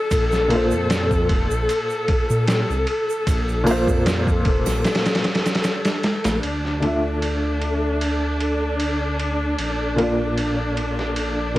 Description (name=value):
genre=trip hop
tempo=76 BPM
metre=4/4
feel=straight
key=unclear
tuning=A4 = 440 Hz
part: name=rich chamber string section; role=sustained chords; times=0.0-11.6 s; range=D4 to A4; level=-24 LUFS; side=left 1 dB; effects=cassette tape
part: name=dark detuned saw bass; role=bass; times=0.1-11.6 s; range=F1 to Bb2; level=-25 LUFS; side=equal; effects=tube saturation
part: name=trip hop sampler-style drum kit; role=drums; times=0.1-11.6 s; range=kick drum, ride cymbal, snare drum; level=-24 LUFS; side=equal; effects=high-pass filter on cymbals, cassette tape, high-pass filter on kick, high-pass filter on snare, high-pass filter on room
part: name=tube shaker and triangle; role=percussion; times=0.1-6.4 s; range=none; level=-40 LUFS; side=right 12 dB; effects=none
part: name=felt-muted upright piano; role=accompaniment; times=0.5-11.6 s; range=Bb2 to E5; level=-24 LUFS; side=equal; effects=tremolo, cassette tape, tape echo
part: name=flickering grainy texture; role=texture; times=7.1-11.6 s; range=A4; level=-31 LUFS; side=left 1 dB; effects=built-in reverb, cassette tape
room=light reverb, small room ambience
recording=home recording on cassette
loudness=-18 LUFS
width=side -16 dB against mid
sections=0.0-6.4 A section; 6.4-11.6 B section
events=filter sweep on felt piano 0.0-6.4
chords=0.1 Bbsus2; 6.4 Dmadd9; 9.6 Bb